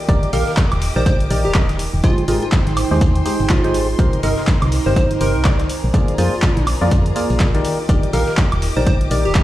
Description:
piano house; 123 BPM; 4/4; swing 59% on 16ths; A4 = 443 Hz
clear studio string section; sustained chords; 0.0-9.4 s; G4 to D6; -31 LUFS; left 3 dB; sidechain pumping
deep dark ambient pad; texture; 0.0-9.4 s; Ab3 to D6; -27 LUFS; right 4 dB; chorus, built-in reverb, sidechain pumping
percussive organ stab; riff; 0.1-9.4 s; C3 to F5; -22 LUFS; equal; chorus, sidechain pumping, tape echo
solid FM bass; bass; 0.1-9.4 s; Eb1 to F2; -19 LUFS; equal; tube saturation, sidechain pumping
dusty soul sampler-style drum kit; drums; 0.1-9.4 s; hi-hat, snare drum, tambourine; -34 LUFS; left 1 dB
electronic kick drum; drums; 0.1-9.4 s; -16 LUFS; equal; overdrive, small room ambience
punchy analog drum machine; drums; 0.1-9.4 s; handclaps, hi-hat, woodblock; -26 LUFS; right 1 dB; overdrive, small room ambience
plucky unison lead; melody; 0.3-9.4 s; F4 to C5; -25 LUFS; equal; phaser, tape echo
light reverb; played on a big sound system in a bare room, large studio reverb; -14 LUFS; side -14 dB against mid
0.0-9.4 A section
0.0 Ebmaj7; 2.0 Abmaj7; 4.0 Cm7; 5.7 Bb7; 7.6 Ebmaj7

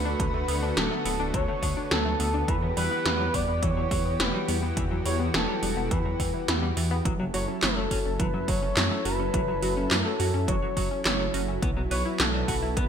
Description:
synthwave; 105 BPM; 4/4; straight; F# phrygian; A4 = 440 Hz
expressive synth lead; melody; 0.0-12.9 s; A4 to D5; -31 LUFS; left 1 dB; lush chorus, ping-pong delay
lush unison pad; sustained chords; 0.0-12.9 s; D3 to A4; -33 LUFS; right 1 dB; chorus, sidechain pumping
analog pluck; arpeggios; 0.0-12.9 s; E3 to B4; -34 LUFS; left 1 dB; chorus, vintage 12-bit sampler grit, digital delay
dark detuned saw bass; bass; 0.0-12.9 s; D1 to F#2; -30 LUFS; equal; sidechain pumping
mellow electric guitar; riff; 0.2-12.8 s; D3 to F#4; -36 LUFS; left 2 dB; lush chorus, digital delay
80s electronic pad drums; drums; 0.2-12.9 s; handclaps, hi-hat, snare drum; -29 LUFS; right 1 dB
electronic kick drum; drums; 0.2-12.9 s; -30 LUFS; equal
moderate lush hall reverb, RT60 1.7 s; bright 1980s-style digital production; -24 LUFS; side -8 dB against mid
0.0-12.9 A section
0.0 D6; 2.5 Emadd9; 7.1 F#m7; 11.6 Bsus4

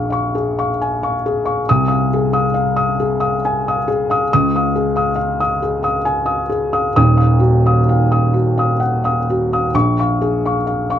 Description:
neoclassical minimalist piano; 67 BPM; 3/4; rubato; Db major; A4 = 445 Hz
felt-muted upright piano; solo; 0.0-11.0 s; Eb1 to Eb6; -14 LUFS; equal
moderate studio ambience, RT60 0.5 s; dark, warm production; -14 LUFS; side -10 dB against mid
0.0-11.0 A section
0.0 Bbm7; 1.7 Fm7/C; 4.3 Dbadd9; 7.0 Ebmadd9; 9.7 Bbm7

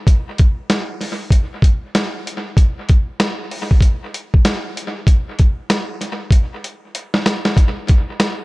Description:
hip hop; 96 BPM; 4/4; swing 62% on 16ths
boom bap sampler-style drum kit; drums; 0.1-8.4 s; hi-hat, kick drum, snare drum; -14 LUFS; equal; vintage 12-bit sampler grit, dub echo
little or no reverb; echo-heavy mix; -15 LUFS; side -22 dB against mid
0.0-7.6 A section
drum fill 6.3-7.6

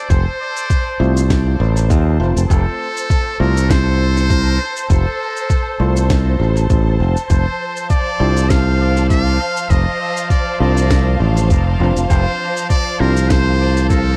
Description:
ambient dub; 100 BPM; 4/4; swing 55% on 16ths; F major; A4 = 440 Hz
trumpet with metal mute; melody; 0.0-14.2 s; A4 to F5; -25 LUFS; equal; vintage 12-bit sampler grit, dub echo
clear studio string section; sustained chords; 0.0-14.2 s; F3 to A5; -27 LUFS; equal
modern bright fingered electric bass; bass; 0.1-14.2 s; F1 to Eb2; -17 LUFS; equal; tube saturation
electronic kick drum; drums; 0.1-14.0 s; -18 LUFS; equal; studio ambience
electronic shaker and snare drum; drums; 0.1-14.0 s; -30 LUFS; equal; studio ambience, dub echo
tine electric piano; stabs; 1.0-13.1 s; A3 to F4; -28 LUFS; equal; dub echo
light reverb; -16 LUFS; mono
0.0-14.2 A section
0.0 F; 7.3 Dm7/F

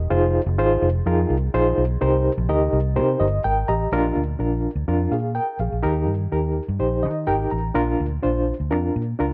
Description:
uptempo 1960s-style soul; 125 BPM; 4/4; straight; A4 = 440 Hz
vintage muted fingered electric bass; bass; 0.0-9.3 s; F1 to Eb3; -25 LUFS; equal
reed electric piano; accompaniment; 0.1-9.3 s; Bb2 to Bb5; -24 LUFS; equal; tremolo
light reverb; -22 LUFS; mono
0.0-3.9 A section; 3.9-9.3 B section
reed electric piano fill 3.0-3.9, 6.8-7.8
0.1 Fm7; 2.0 Cm7; 3.9 Bb; 5.8 Eb; 7.8 Bb

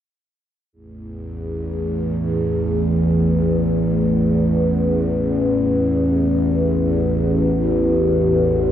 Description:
ambient; free time; A4 = 440 Hz
overtone-sweeping drone; solo; 1.0-8.7 s; A1 to E2; -16 LUFS; equal; chorus, built-in reverb, diffuse ambient delay
wet huge ambient reverb, RT60 8.1 s; worn, warbling old tape, cassette tape, warbly pitch drift; -16 LUFS; side -10 dB against mid
0.8-8.7 A section
0.8 A5

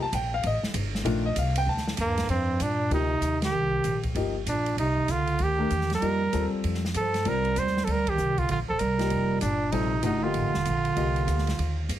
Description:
modal jazz; 194 BPM; 4/4; swing 63% on 8ths; F mixolydian; A4 = 440 Hz
clear grand piano; accompaniment; 0.0-11.4 s; Eb3 to A5; -30 LUFS; left 4 dB
upright bass; bass; 0.0-12.0 s; Eb1 to G2; -29 LUFS; equal
open jazz drum kit; drums; 0.1-12.0 s; hi-hat, kick drum, ride cymbal, snare drum; -35 LUFS; right 1 dB
mellow trumpet; melody; 2.0-11.9 s; Bb3 to C5; -28 LUFS; right 2 dB
mellow bass clarinet; second line; 2.0-11.9 s; G2 to G3; -31 LUFS; right 4 dB
light reverb; heavily compressed radio sound; -24 LUFS; side -12 dB against mid
0.0-2.3 A section; 2.3-12.0 B section
band accent 3.4, 8.0
0.0 F13sus4

